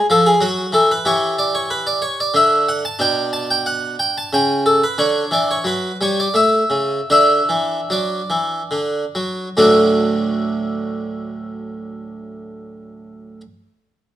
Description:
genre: classical, baroque-style suite movement for harpsichord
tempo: 69-94 BPM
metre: 3/4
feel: rubato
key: D major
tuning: A4 = 440 Hz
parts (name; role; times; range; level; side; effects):
- harpsichord; solo; 0.0-13.4 s; D2 to A5; -15 LUFS; equal; none
room: moderate stone room reverb, RT60 1.2 s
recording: none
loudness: -15 LUFS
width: side -12 dB against mid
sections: 0.0-9.6 A section; 9.6-14.2 B section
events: slowing down 4.0-9.6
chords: 0.4 Esus24; 1.1 Em6; 2.3 N.C.; 3.0 Bm7; 4.3 N.C.; 5.0 Dsus2; 5.7 Gmaj7#11/F#; 6.4 A; 7.1 D

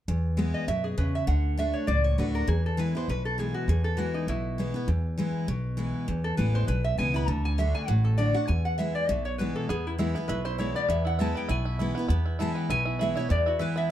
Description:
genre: bluegrass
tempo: 200 BPM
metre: 4/4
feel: swing 55% on 8ths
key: E mixolydian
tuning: A4 = 439 Hz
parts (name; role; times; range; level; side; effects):
- picked steel-string acoustic guitar; accompaniment; 0.1-13.9 s; E2 to F#4; -30 LUFS; left 1 dB; none
- upright bass; bass; 0.1-13.7 s; A1 to F#2; -28 LUFS; equal; none
- lap resonator guitar; melody; 0.5-13.9 s; D#4 to B5; -30 LUFS; equal; none
- bluegrass banjo; melody; 9.7-13.9 s; B3 to E4; -35 LUFS; right 5 dB; none
room: light reverb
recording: dark, warm production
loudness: -25 LUFS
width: side -12 dB against mid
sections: 0.1-13.9 A section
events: none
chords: 0.1 E; 1.3 D; 2.5 E; 7.3 D; 8.5 E

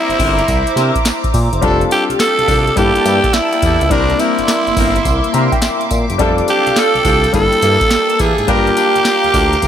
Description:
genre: R&B, new jack swing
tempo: 105 BPM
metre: 4/4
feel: swing 66% on 16ths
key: G dorian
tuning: A4 = 441 Hz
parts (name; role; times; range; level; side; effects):
- growling tenor saxophone; melody; 0.0-9.7 s; D4 to A4; -15 LUFS; right 1 dB; none
- warm grand piano; accompaniment; 0.0-9.7 s; G3 to Bb5; -20 LUFS; left 5 dB; none
- phased analog pad; sustained chords; 0.0-9.7 s; Bb3 to E6; -20 LUFS; equal; phaser, chorus
- smooth synth bass; bass; 0.1-9.7 s; F1 to C3; -19 LUFS; equal; none
- booming analog drum machine; drums; 0.1-9.7 s; handclaps, hi-hat, kick drum, snare drum, tambourine; -18 LUFS; equal; none
- warm horn section; stabs; 0.2-9.5 s; Bb3 to Bb4; -22 LUFS; left 1 dB; none
room: light reverb, small room ambience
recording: none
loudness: -11 LUFS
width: side -9 dB against mid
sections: 0.0-9.7 A section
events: grand piano fill 5.1-6.2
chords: 0.0 C9; 1.6 F69; 2.8 Gm69; 3.9 C9; 6.2 F69; 7.3 Gm69; 8.5 Gm7

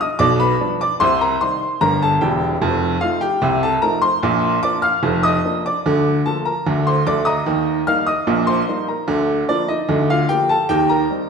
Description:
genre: ragtime piano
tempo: 74 BPM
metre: 2/4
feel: straight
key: Bb major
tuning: A4 = 440 Hz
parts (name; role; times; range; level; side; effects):
- warm upright piano; solo; 0.0-11.3 s; E1 to F6; -16 LUFS; equal; none
room: wet recital hall reverb, RT60 1.4 s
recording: recorded in a church or concert hall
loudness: -15 LUFS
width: side -6 dB against mid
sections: 0.0-11.3 A section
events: none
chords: 0.0 G7/B; 1.0 Cm; 2.6 F7; 4.2 Bb; 5.8 Bb/D; 7.5 Eb; 9.1 Bb/D; 10.7 Cm/Eb

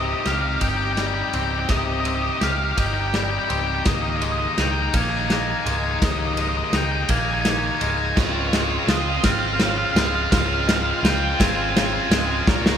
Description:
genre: post-rock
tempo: 56 BPM (dotted quarters)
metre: 6/8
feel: straight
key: Db lydian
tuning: A4 = 440 Hz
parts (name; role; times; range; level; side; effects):
- octave-fuzz lead guitar; melody; 0.0-12.8 s; Db5 to Ab5; -26 LUFS; right 2 dB; distortion
- twangy electric guitar; arpeggios; 0.0-12.8 s; Db2 to G4; -28 LUFS; left 2 dB; none
- tight distorted guitar; riff; 0.0-12.8 s; Bb3 to Bb4; -26 LUFS; left 8 dB; distortion
- picked electric bass; bass; 0.0-12.8 s; Db1 to Db2; -26 LUFS; right 1 dB; none
- loose indie drum kit; drums; 0.3-12.8 s; crash cymbal, kick drum, ride cymbal, snare drum; -23 LUFS; equal; none
- cranked stack guitar; riff; 8.2-12.8 s; C4 to Bb4; -27 LUFS; right 9 dB; overdrive
room: moderate scoring stage reverb, RT60 1.9 s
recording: recorded in a church or concert hall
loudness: -19 LUFS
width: side -8 dB against mid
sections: 0.0-12.8 A section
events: build-up 0.0-12.8; drum fill 0.0-12.8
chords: 0.0 Cm/Db; 3.9 Ebsus4/Db; 8.2 Dbmaj7

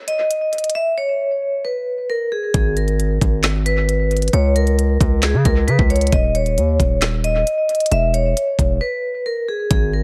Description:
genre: hip hop, trap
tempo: 134 BPM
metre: 4/4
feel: half-time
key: unclear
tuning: A4 = 440 Hz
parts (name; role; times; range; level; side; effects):
- vibraphone with medium hard mallets; melody; 0.1-10.0 s; G#4 to E5; -22 LUFS; equal; analog delay
- trap drum kit; drums; 0.1-9.8 s; handclaps, hi-hat, kick drum, snare drum; -22 LUFS; equal; analog delay
- distorted 808-style bass; bass; 2.5-10.0 s; D#1 to C#3; -20 LUFS; equal; distortion
room: light reverb, digital ambience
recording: echo-heavy mix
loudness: -18 LUFS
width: mono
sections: 0.0-9.7 A section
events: break 0.0-2.5, 8.8-9.7; drums muted 0.8-2.5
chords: 0.0 N.C.; 2.5 G#m; 4.3 A#m/C#; 6.1 C#sus2/D#; 7.9 E5

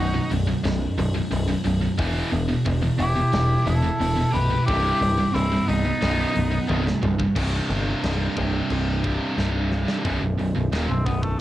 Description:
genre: heavy metal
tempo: 89 BPM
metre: 4/4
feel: straight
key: unclear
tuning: A4 = 441 Hz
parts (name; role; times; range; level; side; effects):
- mellow cor anglais; melody; 0.0-11.4 s; A3 to B4; -26 LUFS; left 1 dB; cassette tape
- high-gain lead guitar; second line; 0.0-7.0 s; B3 to G4; -30 LUFS; right 2 dB; distortion, cassette tape
- scooped high-gain guitar; riff; 0.0-11.3 s; B1 to E3; -26 LUFS; right 5 dB; distortion, cassette tape
- tight distorted guitar; riff; 0.0-11.3 s; B1 to E3; -28 LUFS; left 5 dB; distortion, cassette tape
- growling picked electric bass; bass; 0.0-11.4 s; B0 to G1; -25 LUFS; equal; overdrive
- tight metal drum kit; drums; 0.3-11.4 s; crash cymbal, hi-hat, kick drum, snare drum, toms; -32 LUFS; equal; none
room: little or no reverb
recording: home recording on cassette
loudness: -20 LUFS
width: side -14 dB against mid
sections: 0.0-7.4 A section; 7.4-10.0 B section; 10.0-11.4 C section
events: half time 0.0-7.4; drum fill 6.7-7.4, 9.4-10.0; cor anglais solo 10.0-11.4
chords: 0.0 B5; 2.0 Em; 4.7 C; 6.0 B; 6.7 C5; 10.0 B

